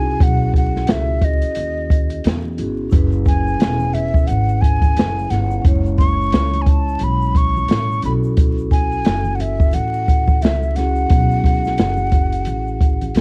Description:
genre	hip hop, jazz-hop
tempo	88 BPM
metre	4/4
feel	swing 59% on 16ths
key	F# minor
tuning	A4 = 439 Hz
part	breathy mellow jazz flute	melody	0.0-13.1 s	D#5 to C#6	-25 LUFS	equal	cassette tape
part	vibraphone with soft mallets	accompaniment	0.0-13.2 s	G#3 to C#5	-28 LUFS	equal	cassette tape
part	upright bass	bass	0.0-13.2 s	E1 to E2	-23 LUFS	equal	none
part	open jazz drum kit	drums	0.2-13.2 s	hi-hat, kick drum, snare drum	-18 LUFS	equal	cassette tape
part	egg shaker and congas	percussion	2.9-13.2 s	none	-35 LUFS	equal	none
room	studio ambience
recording	home recording on cassette, vinyl crackle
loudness	-17 LUFS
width	mono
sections	0.0-13.2 A section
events	none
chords	0.0 Bsus4; 2.9 F#9sus4

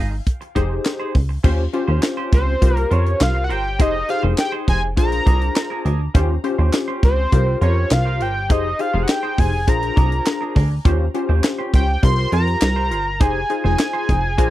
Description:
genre	early-eighties boogie funk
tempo	102 BPM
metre	4/4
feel	straight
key	F minor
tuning	A4 = 439 Hz
part	fat analog lead	melody	0.0-14.5 s	C5 to C6	-23 LUFS	equal	none
part	semi-hollow electric guitar	riff	0.0-14.5 s	Db4 to Eb5	-30 LUFS	right 5 dB	wide subtle chorus
part	plucky analog bass	bass	0.0-14.5 s	F1 to F2	-19 LUFS	equal	none
part	tight funk drum kit	drums	0.3-14.5 s	crash cymbal, handclaps, hi-hat, kick drum, snare drum	-17 LUFS	equal	none
part	funky polysynth comp	accompaniment	0.6-14.5 s	Db4 to C5	-25 LUFS	left 4 dB	chorus
room	little or no reverb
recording	dry, close 1970s-style studio recording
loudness	-16 LUFS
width	side -15 dB against mid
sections	0.0-1.4 A section; 1.4-14.5 B section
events	none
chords	0.0 Fm7; 1.4 Eb13; 2.6 C7sus4; 3.8 Fm7; 5.0 Bb7; 6.1 Eb13; 7.3 C7sus4; 8.5 Fm7; 9.7 Bb7; 10.9 Eb13; 12.0 C7sus4; 13.2 Fm7

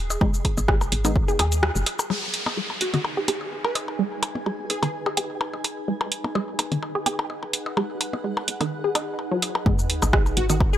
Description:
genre	minimal techno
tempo	127 BPM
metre	4/4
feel	swing 54% on 16ths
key	G# minor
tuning	A4 = 439 Hz
part	woody FM bass	bass	0.0-10.7 s	D#1 to D#2	-26 LUFS	equal	tube saturation, sidechain pumping, high-pass filter
part	swarming drone	texture	0.0-2.1, 10.0-10.8 s	G#4	-39 LUFS	equal	built-in reverb, sidechain pumping
part	punchy analog drum machine	drums	0.1-10.8 s	hi-hat, rim click, shaker	-25 LUFS	right 1 dB	none
part	percussion blips	percussion	0.1-10.7 s	none	-29 LUFS	left 2 dB	tape echo
part	resonant blip pluck	riff	0.2-10.8 s	D#3 to G#4	-28 LUFS	right 1 dB	chorus, phaser, sidechain pumping, analog delay
part	electronic kick drum	drums	0.2-1.3, 9.7-10.7 s	none	-22 LUFS	equal	none
part	filtered dub chord stab	stabs	1.0-1.1 s	G#3 to D#4	-32 LUFS	left 3 dB	chorus, cassette tape, tape echo
part	downlifter and sub drop	sound effects	2.1-5.9, 9.7-10.8 s	none	-32 LUFS	equal	none
part	granular cloud pad	texture	2.7-10.8 s	D#4 to G#5	-33 LUFS	equal	built-in reverb, sidechain pumping
part	plucky unison lead	melody	2.8-4.9, 10.4-10.6 s	F#4 to B4	-31 LUFS	equal	phaser, ensemble chorus, tape echo
room	light reverb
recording	dry, gritty hardware recording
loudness	-22 LUFS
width	side -11 dB against mid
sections	0.0-2.1 A section; 2.1-9.7 B section; 9.7-10.8 C section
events	break 1.6-2.1; band accent 1.6; filter sweep on synth arpeggio sound 2.1-9.7; drop 9.7-10.8; impact 9.7-10.8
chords	0.0 G#5; 2.1 G#m

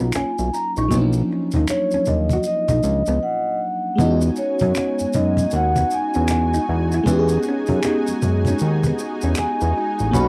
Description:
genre	R&B, neo-soul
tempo	78 BPM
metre	4/4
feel	swing 62% on 16ths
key	E major from 4.0 s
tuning	A4 = 439 Hz
part	vintage hollow-body jazz guitar	second line	0.0-10.3 s	B3 to F#4	-30 LUFS	equal	none
part	FM electric piano with soft pad layer	accompaniment	0.0-10.3 s	F3 to G#4	-26 LUFS	equal	chorus
part	fat analog bass	bass	0.0-10.3 s	A1 to F#2	-22 LUFS	equal	none
part	vibraphone with soft mallets	melody	0.1-10.3 s	C#5 to C#6	-26 LUFS	equal	none
part	finger snaps and maracas	percussion	0.1-10.3 s	none	-36 LUFS	equal	none
part	cajon	drums	0.2-10.3 s	none	-27 LUFS	equal	cassette tape
part	lush unison pad	sustained chords	4.0-10.3 s	D#4 to C#6	-32 LUFS	equal	chorus, tremolo
part	clear horn section	stabs	10.1-10.3 s	D#3 to F#4	-28 LUFS	equal	none
room	moderate small room reverb, RT60 0.6 s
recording	home recording on cassette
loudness	-20 LUFS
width	mono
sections	0.0-4.0 A section; 4.0-10.3 B section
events	break 3.2-4.0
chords	0.0 Bmaj9; 4.0 Emaj9

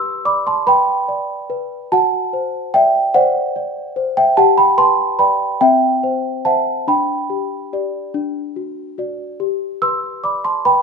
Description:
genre	classical, lullaby for celesta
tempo	48 BPM (dotted quarters)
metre	6/8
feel	rubato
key	G major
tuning	A4 = 440 Hz
part	small celesta	solo	0.0-10.8 s	C4 to E6	-15 LUFS	equal	none
room	moderate recital hall reverb, RT60 1.4 s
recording	minimal, uncompressed stereo recording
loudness	-14 LUFS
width	side -5 dB against mid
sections	0.0-10.8 A section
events	none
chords	0.0 G; 1.9 D7/F#; 4.4 G; 5.6 C; 6.9 G/D; 8.1 D; 9.4 G

